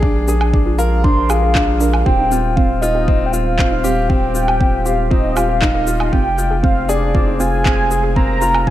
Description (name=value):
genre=piano and strings electronica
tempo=118 BPM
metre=4/4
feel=straight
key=Eb major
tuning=A4 = 440 Hz
part: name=warbly dusty pluck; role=arpeggios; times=0.0-8.7 s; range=C4 to Eb5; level=-26 LUFS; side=right 4 dB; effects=chorus, cassette tape, sidechain pumping, ping-pong delay
part: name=warm baby grand piano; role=riff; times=0.0-8.7 s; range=C4 to Bb4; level=-20 LUFS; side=left 2 dB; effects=ping-pong delay
part: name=round analog bass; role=bass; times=0.0-8.7 s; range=Eb1 to Bb1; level=-19 LUFS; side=equal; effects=sidechain pumping
part: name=electronic kick drum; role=drums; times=0.0-8.7 s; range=none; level=-16 LUFS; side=equal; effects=none
part: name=electronic shaker, woodblock and handclaps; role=drums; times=0.3-8.6 s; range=none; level=-24 LUFS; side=right 1 dB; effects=overdrive
part: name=warm velvety synth lead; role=melody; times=0.8-8.7 s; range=D5 to C6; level=-19 LUFS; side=equal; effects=chorus, tremolo, cassette tape
room=light reverb, digital ambience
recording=none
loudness=-13 LUFS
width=side -13 dB against mid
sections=0.0-8.7 A section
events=none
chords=0.0 Bb7; 2.1 Eb69; 6.1 Fm